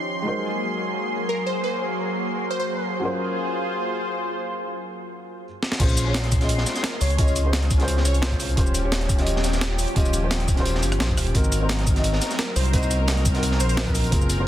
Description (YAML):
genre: liquid drum and bass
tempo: 173 BPM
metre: 4/4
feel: swing 53% on 16ths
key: unclear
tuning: A4 = 440 Hz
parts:
  - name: felt-muted upright piano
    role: accompaniment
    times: 0.0-14.5 s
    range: Eb3 to Eb5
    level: -29 LUFS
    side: equal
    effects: vintage 12-bit sampler grit, ping-pong delay
  - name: lush unison pad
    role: sustained chords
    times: 0.0-14.5 s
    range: F3 to C6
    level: -28 LUFS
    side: equal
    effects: chorus, sidechain pumping
  - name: plucky unison lead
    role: melody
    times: 1.3-2.9, 6.8-8.4, 12.4-13.9 s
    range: Bb4 to Db5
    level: -31 LUFS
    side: equal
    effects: dub echo
  - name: breakbeat sampler-style drum kit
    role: drums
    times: 5.6-14.4 s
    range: crash cymbal, hi-hat, rim click, shaker, snare drum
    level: -28 LUFS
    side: equal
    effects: none
  - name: smooth synth bass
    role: bass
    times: 5.8-14.5 s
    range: Eb1 to Db2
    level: -23 LUFS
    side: equal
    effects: tube saturation
  - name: crunchy breakbeat drum kit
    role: drums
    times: 5.8-14.4 s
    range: hi-hat, snare drum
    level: -32 LUFS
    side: equal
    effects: high-pass filter on hats, high-pass filter on snare, high-pass filter on room
  - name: electronic kick drum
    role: drums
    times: 5.8-14.2 s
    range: none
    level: -22 LUFS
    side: equal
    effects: none
room: studio reverb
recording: dense, heavily limited modern master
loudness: -20 LUFS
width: side -12 dB against mid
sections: 0.0-5.8 A section; 5.8-14.5 B section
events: filter sweep on felt piano 0.0-5.8; drum fill 5.6; drop 5.8-14.5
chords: 0.2 Ab9; 3.0 Gbmaj9#11; 5.8 Bbm9; 8.6 Eb13; 11.3 Ab9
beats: | 0.25 0.60 0.94 1.29 | 1.64 1.98 2.33 2.68 | 3.02 3.37 3.72 4.07 | 4.41 4.76 5.11 5.45 | 5.80 6.14 6.49 6.84 | 7.19 7.53 7.88 8.23 | 8.57 8.92 9.27 9.61 | 9.96 10.31 10.65 11.00 | 11.35 11.70 12.04 12.39 | 12.73 13.08 13.43 13.78 | 14.12 14.47